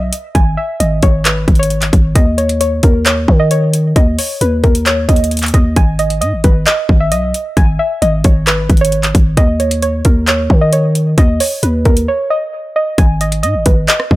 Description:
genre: hip hop, trap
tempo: 133 BPM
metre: 4/4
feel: half-time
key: G# minor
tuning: A4 = 440 Hz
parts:
  - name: soft round pluck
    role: melody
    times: 0.0-14.2 s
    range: A#4 to G#5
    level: -17 LUFS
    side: equal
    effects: chorus, low-pass filter, tape echo
  - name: growling 808-style bass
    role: bass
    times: 0.0-14.2 s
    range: G#1 to D#3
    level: -14 LUFS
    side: equal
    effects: none
  - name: trap drum kit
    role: drums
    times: 0.1-14.2 s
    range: handclaps, hi-hat, kick drum, rim click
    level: -12 LUFS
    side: equal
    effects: none
room: little or no reverb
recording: none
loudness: -10 LUFS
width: side -17 dB against mid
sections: 0.0-13.0 A section; 13.0-14.2 B section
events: break 12.1-13.0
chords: 0.0 G#m; 2.2 Bmaj9/D# (rootless); 5.8 G#m; 9.4 Bmaj9/D# (rootless); 13.0 G#m

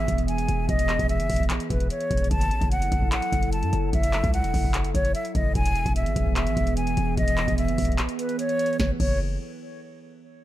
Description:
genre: hip hop, trap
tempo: 148 BPM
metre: 4/4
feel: half-time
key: unclear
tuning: A4 = 440 Hz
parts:
  - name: breathy concert flute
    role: melody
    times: 0.0-9.2 s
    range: B4 to A5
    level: -28 LUFS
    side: left 1 dB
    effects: ping-pong delay
  - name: warbly tape-like pad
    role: sustained chords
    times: 0.0-9.0 s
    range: E3 to A4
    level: -31 LUFS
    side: right 2 dB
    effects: chorus, built-in reverb
  - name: hard-hitting 808-style bass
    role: bass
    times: 0.0-9.4 s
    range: E1 to F#2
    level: -27 LUFS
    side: equal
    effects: none
  - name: booming analog drum machine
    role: drums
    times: 0.1-9.2 s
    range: crash cymbal, handclaps, hi-hat, kick drum, snare drum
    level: -25 LUFS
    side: equal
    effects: none
room: digital ambience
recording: dark, warm production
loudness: -22 LUFS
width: side -14 dB against mid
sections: 0.0-8.8 A section; 8.8-10.4 B section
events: break 8.0-8.8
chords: 0.0 E; 2.3 F#m7; 5.6 E; 8.8 N.C.

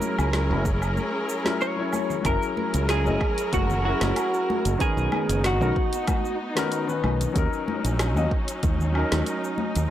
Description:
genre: sunset chillout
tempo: 94 BPM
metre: 4/4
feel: swing 53% on 16ths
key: unclear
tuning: A4 = 440 Hz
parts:
  - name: warm grand piano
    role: accompaniment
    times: 0.0-9.9 s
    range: D#3 to D#5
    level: -29 LUFS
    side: moving between left 6 dB and right 5 dB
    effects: auto-pan, analog delay
  - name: warm symphonic string section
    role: sustained chords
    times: 0.0-9.9 s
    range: F#3 to A#4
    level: -31 LUFS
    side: left 1 dB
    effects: none
  - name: deep house drum kit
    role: drums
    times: 0.0-9.9 s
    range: cabasa, hi-hat, snare drum, woodblock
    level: -30 LUFS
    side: equal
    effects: none
  - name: congas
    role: percussion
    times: 0.0-9.7 s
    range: none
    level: -34 LUFS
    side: left 4 dB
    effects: none
  - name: fingered electric bass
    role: bass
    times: 0.2-9.9 s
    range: F#1 to D#2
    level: -25 LUFS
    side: equal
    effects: none
  - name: electronic kick drum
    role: drums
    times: 0.7-8.8 s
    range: none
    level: -26 LUFS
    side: equal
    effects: none
  - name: clean electric guitar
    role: melody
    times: 1.6-6.4 s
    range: F#4 to C#5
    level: -27 LUFS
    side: right 1 dB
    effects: analog chorus, analog delay
room: little or no reverb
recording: dry, gritty hardware recording, transformer saturation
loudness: -22 LUFS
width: side -12 dB against mid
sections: 0.0-2.2 A section; 2.2-9.9 B section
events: break 1.0-2.2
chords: 0.0 F#7; 4.8 Bmaj9; 7.4 D#m7

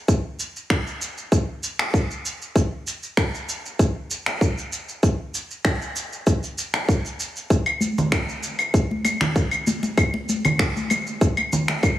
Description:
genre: downtempo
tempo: 97 BPM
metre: 4/4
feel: straight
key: none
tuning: none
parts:
  - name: electronic kick drum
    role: drums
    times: 0.1-12.0 s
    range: none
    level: -19 LUFS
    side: equal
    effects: none
  - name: electronic shaker, finger snaps and claves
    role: drums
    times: 0.1-12.0 s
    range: none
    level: -25 LUFS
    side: equal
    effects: none
  - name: congas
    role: percussion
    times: 7.8-11.8 s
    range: none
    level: -24 LUFS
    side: equal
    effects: none
room: moderate lush hall reverb, RT60 2.3 s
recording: heavily compressed radio sound, multiband compression, small room reverb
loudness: -21 LUFS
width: side -13 dB against mid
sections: 0.0-12.0 A section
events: none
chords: none

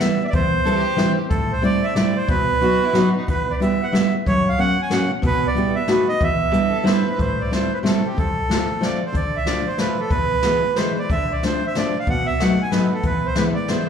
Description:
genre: musette waltz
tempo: 185 BPM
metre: 3/4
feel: swing 54% on 8ths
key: E minor, A minor from 7.2 s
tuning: A4 = 440 Hz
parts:
  - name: accordion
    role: melody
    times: 0.0-13.9 s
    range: G4 to G#5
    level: -22 LUFS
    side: right 3 dB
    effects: plate reverb, slapback echo, tape echo
  - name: fingerpicked steel-string acoustic guitar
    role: accompaniment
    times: 0.0-13.9 s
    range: E2 to G4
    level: -20 LUFS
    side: left 1 dB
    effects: plate reverb, slapback echo
  - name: jazz brush drum kit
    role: drums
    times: 0.0-13.8 s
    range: hi-hat, kick drum, snare drum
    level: -24 LUFS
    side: equal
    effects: none
  - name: warm violin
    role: second line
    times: 0.7-3.2, 6.5-7.2 s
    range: D#4 to B4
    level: -30 LUFS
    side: right 2 dB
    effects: plate reverb, slapback echo
room: moderate club reverb, RT60 0.6 s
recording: live gig heard through the venue's PA, club reverb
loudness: -17 LUFS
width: side -7 dB against mid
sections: 0.0-7.2 A section; 7.2-13.9 B section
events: none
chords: 0.3 C/E; 1.3 Am7; 2.3 B; 3.3 Em; 4.3 F#; 5.2 Em/B; 5.9 B7; 6.2 Em7; 7.2 Am7; 8.2 F; 9.1 Dm; 10.1 E; 11.1 Dm7; 12.1 B7; 13.0 E

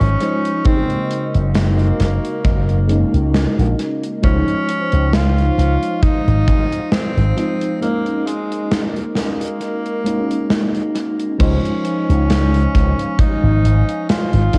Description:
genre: vaporwave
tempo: 67 BPM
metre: 4/4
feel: swing 54% on 16ths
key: Gb lydian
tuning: A4 = 440 Hz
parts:
  - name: breathy tenor saxophone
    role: melody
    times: 0.0-14.6 s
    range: Ab3 to F4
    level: -26 LUFS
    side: equal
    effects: vintage 12-bit sampler grit, tape echo
  - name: mellow FM electric piano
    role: accompaniment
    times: 0.0-14.6 s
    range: Db3 to C5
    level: -24 LUFS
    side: equal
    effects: ensemble chorus, tape echo
  - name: warbly tape-like pad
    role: sustained chords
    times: 0.0-14.6 s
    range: Eb4 to Ab5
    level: -34 LUFS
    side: equal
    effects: chorus, built-in reverb
  - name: slap bass with an envelope filter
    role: bass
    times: 0.0-14.5 s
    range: Gb1 to Db2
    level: -18 LUFS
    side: equal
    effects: none
  - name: gated 80s drum kit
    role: drums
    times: 0.0-14.6 s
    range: crash cymbal, hi-hat, snare drum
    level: -24 LUFS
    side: equal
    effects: tape echo
  - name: kick drum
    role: drums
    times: 0.7-14.6 s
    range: none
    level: -19 LUFS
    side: equal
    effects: none
room: light reverb, studio reverb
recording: echo-heavy mix, cassette tape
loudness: -17 LUFS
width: mono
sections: 0.0-11.4 A section; 11.4-14.6 B section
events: break 7.8-11.4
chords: 0.0 Dbmaj9; 0.7 Gb6; 4.2 Dbmaj9; 7.8 Gb6; 11.4 Dbmaj9

